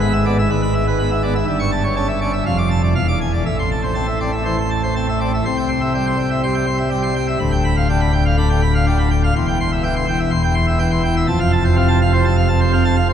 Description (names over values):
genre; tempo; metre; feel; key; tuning
classical, organ toccata; 123 BPM; 4/4; straight; A minor, C major from 5.4 s; A4 = 440 Hz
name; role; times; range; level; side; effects
pipe organ, plenum; solo; 0.0-13.1 s; D1 to D6; -15 LUFS; equal; none
room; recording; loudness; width
wet cathedral reverb, RT60 5.6 s; minimal, uncompressed stereo recording; -15 LUFS; side -9 dB against mid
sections
0.0-5.4 A section; 5.4-13.1 B section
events
none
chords
0.0 E/G#; 1.5 A7/G; 2.5 Dm/F; 2.9 E7b9; 3.4 Am; 5.4 C; 7.4 G7/D; 9.3 C/E; 11.3 F